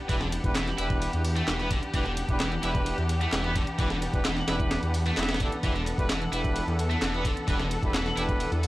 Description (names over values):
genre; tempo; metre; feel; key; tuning
breakbeat, breaks; 130 BPM; 4/4; straight; E minor; A4 = 438 Hz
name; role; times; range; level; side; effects
muted studio string section; sustained chords; 0.0-8.7 s; E3 to F#5; -33 LUFS; left 1 dB; sidechain pumping
heavy high-gain guitar; riff; 0.1-8.2 s; D3 to E4; -33 LUFS; equal; distortion, tape echo
clear brass ensemble; stabs; 0.1-8.6 s; D4 to E5; -34 LUFS; right 1 dB; tape echo
detuned saw bass; bass; 0.1-8.7 s; E1 to E2; -30 LUFS; equal; none
breakbeat sampler-style drum kit; drums; 0.1-8.7 s; hi-hat, kick drum, ride cymbal, snare drum; -30 LUFS; equal; none
garage drum kit; drums; 0.1-8.7 s; handclaps, hi-hat; -38 LUFS; equal; none
room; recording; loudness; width
little or no reverb; dry, gritty hardware recording, cassette tape; -25 LUFS; side -17 dB against mid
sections
0.0-8.7 A section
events
none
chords
0.0 Em7